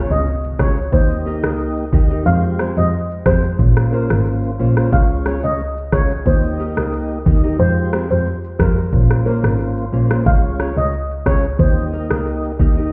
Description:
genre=dancehall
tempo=90 BPM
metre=4/4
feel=straight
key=unclear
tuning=A4 = 438 Hz
part: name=mellow tonewheel organ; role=accompaniment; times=0.0-12.9 s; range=Ab3 to Eb5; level=-27 LUFS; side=equal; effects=slow rotary speaker
part: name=nylon-string guitar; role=arpeggios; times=0.0-12.9 s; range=Ab3 to Eb5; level=-28 LUFS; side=equal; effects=delay
part: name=rich double bass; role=bass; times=0.0-12.9 s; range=Ab1 to F2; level=-21 LUFS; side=equal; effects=none
part: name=impact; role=sound effects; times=0.0-2.3 s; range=none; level=-33 LUFS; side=equal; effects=none
part: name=steel pan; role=melody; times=0.1-12.2 s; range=Bb4 to F5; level=-26 LUFS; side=equal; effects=delay
part: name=island pop drum kit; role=drums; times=0.1-12.9 s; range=kick drum, rim click, shaker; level=-19 LUFS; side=equal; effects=vintage 12-bit sampler grit
room=small room ambience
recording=heard muffled through a wall, stone room reverb, EQ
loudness=-17 LUFS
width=mono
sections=0.0-12.9 A section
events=impact 0.0-2.3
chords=0.0 Db; 0.9 Eb; 2.3 Fmadd9; 3.6 Bbmadd9; 4.9 Db; 6.3 Eb; 7.6 Fmadd9; 8.9 Bbmadd9; 10.3 Db; 11.6 Eb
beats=0.26 0.93 1.59 | 2.26 2.93 3.60 4.26 | 4.93 5.59 6.26 6.93 | 7.59 8.26 8.93 9.60 | 10.26 10.93 11.60 12.26

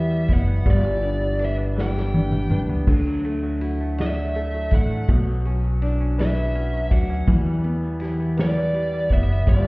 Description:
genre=six-eight pop ballad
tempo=54 BPM (dotted quarters)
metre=6/8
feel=straight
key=unclear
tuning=A4 = 436 Hz
part: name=fuzz lead guitar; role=melody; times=0.0-9.7 s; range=D5 to G5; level=-28 LUFS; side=right 1 dB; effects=distortion
part: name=warm concert grand piano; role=accompaniment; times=0.0-9.7 s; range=B2 to D5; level=-27 LUFS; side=left 1 dB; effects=none
part: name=direct-recorded clean electric guitar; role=arpeggios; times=0.0-9.7 s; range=E3 to E4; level=-36 LUFS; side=right 2 dB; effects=none
part: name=upright bass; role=bass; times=0.0-9.7 s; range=F#1 to E2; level=-23 LUFS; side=equal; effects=none
part: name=unplugged drum kit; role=drums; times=0.3-9.6 s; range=crash cymbal, kick drum, ride cymbal, snare drum, toms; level=-21 LUFS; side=equal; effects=none
room=light reverb, small room ambience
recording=heard muffled through a wall, stone room reverb, EQ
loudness=-19 LUFS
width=side -24 dB against mid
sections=0.0-9.7 A section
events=drum fill 1.8-2.9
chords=0.0 Em; 0.7 G6; 2.9 Dadd9; 5.1 Bmadd9; 7.3 Em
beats=| 0.66 1.77 | 2.88 3.99 | 5.09 6.19 | 7.28 8.38 | 9.47

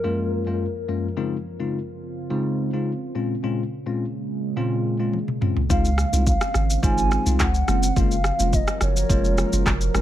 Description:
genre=afrobeats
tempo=106 BPM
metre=4/4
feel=straight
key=unclear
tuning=A4 = 440 Hz
part: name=hollow clarinet-like synth lead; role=melody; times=0.0-0.9, 5.7-10.0 s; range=Bb4 to Ab5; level=-28 LUFS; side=right 1 dB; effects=chorus, ping-pong delay, plate reverb
part: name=bell-like tine electric piano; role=accompaniment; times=0.0-10.0 s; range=Gb2 to F4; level=-25 LUFS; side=moving between left 8 dB and equal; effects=auto-pan
part: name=deep dark ambient pad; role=sustained chords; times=0.0-10.0 s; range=Gb2 to Bb4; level=-30 LUFS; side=right 2 dB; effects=chorus, built-in reverb
part: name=afro-pop drum kit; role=drums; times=5.1-10.0 s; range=handclaps, kick drum, rim click, shaker, toms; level=-23 LUFS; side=equal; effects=overdrive
part: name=punchy sub bass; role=bass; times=5.7-10.0 s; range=F1 to Db2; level=-22 LUFS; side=equal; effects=none
room=moderate studio reverb, RT60 0.6 s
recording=none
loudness=-20 LUFS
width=side -12 dB against mid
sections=0.0-5.7 A section; 5.7-10.0 B section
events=drum fill 5.1-5.7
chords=0.0 Gbmaj7; 1.2 Dbmaj7; 3.2 Bbm7; 5.7 Dbmaj7; 7.7 Gbmaj7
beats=0.04 0.61 | 1.17 1.74 2.31 2.87 | 3.44 4.00 4.57 5.13 | 5.70 6.27 6.83 7.40 | 7.97 8.53 9.10 9.66

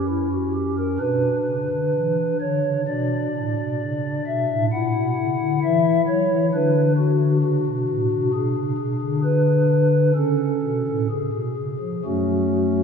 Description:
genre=classical, chorale-style piece for pipe organ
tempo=65 BPM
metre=4/4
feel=rubato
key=B minor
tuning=A4 = 441 Hz
part: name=pipe organ, stopped flute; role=solo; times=0.0-12.8 s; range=F#2 to F#5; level=-19 LUFS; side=left 1 dB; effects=none
room=wet church reverb, RT60 2.9 s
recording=none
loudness=-19 LUFS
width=side -6 dB against mid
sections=0.0-12.8 A section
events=none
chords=0.0 F#5; 1.0 Bm; 4.7 F#7(no3); 6.5 Bm/D; 8.3 G#dim/B; 10.2 Aadd9; 11.1 C#; 12.1 F#m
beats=0.09 | 1.02 1.95 2.88 3.81 | 4.72 5.62 6.52 7.43 | 8.33 9.23 10.15 11.09 | 12.06

